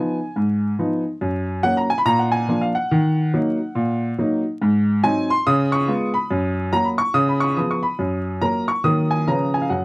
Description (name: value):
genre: jazz, stride piano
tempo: 141 BPM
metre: 4/4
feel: swing 61% on 8ths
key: F# major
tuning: A4 = 442 Hz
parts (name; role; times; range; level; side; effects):
- clear upright piano; solo; 0.0-9.8 s; F#2 to D#6; -18 LUFS; equal; none
room: light reverb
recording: dry, close 1970s-style studio recording, vinyl crackle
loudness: -18 LUFS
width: side -24 dB against mid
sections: 0.0-9.8 A section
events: none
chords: 0.0 C#9 (rootless); 1.2 F#; 2.1 A#; 2.9 D#m; 4.6 G#7; 5.4 C#7; 6.3 F#; 7.1 C#7; 8.0 F#; 8.8 D#m; 9.3 C#7